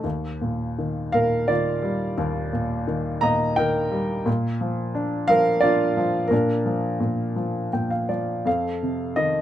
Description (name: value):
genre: classical, lyrical solo piano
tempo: 57 BPM (dotted quarters)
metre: 6/8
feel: uneven beats, rubato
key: Bb major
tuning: A4 = 439 Hz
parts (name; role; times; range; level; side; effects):
- warm upright piano; solo; 0.0-9.4 s; Eb2 to Bb5; -21 LUFS; equal; none
room: light reverb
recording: none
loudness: -21 LUFS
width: side -11 dB against mid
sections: 0.0-8.5 A section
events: upright piano fill 7.4-8.5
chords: 0.0 Ebadd9; 4.3 Bb; 8.5 F7